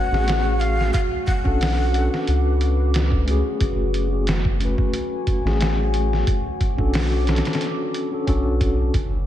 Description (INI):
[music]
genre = trip hop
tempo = 90 BPM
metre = 4/4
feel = swing 54% on 16ths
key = unclear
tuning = A4 = 437 Hz
[part]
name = breathy mellow jazz flute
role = melody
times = 0.0-2.6 s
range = E#5 to F#5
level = -27 LUFS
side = left 2 dB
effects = vintage 12-bit sampler grit, tape echo
[part]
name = mellow tine electric piano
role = accompaniment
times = 0.0-8.9 s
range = A3 to B4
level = -26 LUFS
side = left 2 dB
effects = tremolo, tape echo
[part]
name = deep dark ambient pad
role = sustained chords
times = 0.0-8.9 s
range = A3 to D6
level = -29 LUFS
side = equal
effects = chorus, built-in reverb
[part]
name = soft dub sub bass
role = bass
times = 0.1-9.3 s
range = F#1 to C#2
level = -21 LUFS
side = equal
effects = none
[part]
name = trip hop sampler-style drum kit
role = drums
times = 0.1-9.1 s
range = hi-hat, kick drum, snare drum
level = -24 LUFS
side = equal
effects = small room reverb
[sound]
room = light reverb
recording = none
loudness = -18 LUFS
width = side -12 dB against mid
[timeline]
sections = 0.0-8.9 A section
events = none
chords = 0.0 F#madd9; 0.9 Bm7; 3.6 F#madd9; 6.3 Bm7